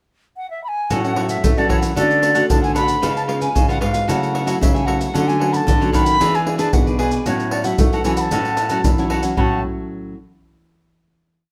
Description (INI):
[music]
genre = samba and choro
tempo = 113 BPM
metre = 4/4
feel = straight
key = A major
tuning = A4 = 440 Hz
[part]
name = wooden flute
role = melody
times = 0.4-9.6 s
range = C#5 to B5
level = -24 LUFS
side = equal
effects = none
[part]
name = cavaquinho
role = accompaniment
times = 0.9-9.6 s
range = D4 to F#5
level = -29 LUFS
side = equal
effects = none
[part]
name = nylon-string guitar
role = accompaniment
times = 0.9-10.1 s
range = G#2 to G#4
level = -26 LUFS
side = equal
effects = none
[part]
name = nylon-string guitar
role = bass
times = 0.9-9.6 s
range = G#2 to A3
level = -24 LUFS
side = equal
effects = none
[part]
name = maracas, surdo and pandeiro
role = percussion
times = 0.9-9.5 s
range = none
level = -23 LUFS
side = equal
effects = none
[sound]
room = moderate stone room reverb, RT60 1.1 s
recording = band playing live in one room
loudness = -18 LUFS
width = mono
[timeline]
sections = 0.0-0.9 pickup bar; 0.9-9.4 A section; 9.4-11.5 final chord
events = none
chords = 0.0 N.C.; 0.9 A6; 2.0 Dmaj7; 3.0 C#7; 4.1 F#m7/C#; 5.1 Dmaj7; 6.2 E7; 7.3 A6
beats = 0.38 | 0.91 1.44 1.97 2.49 | 3.02 3.55 4.08 4.61 | 5.14 5.67 6.20 6.73 | 7.26 7.79 8.32 8.84 | 9.37 9.90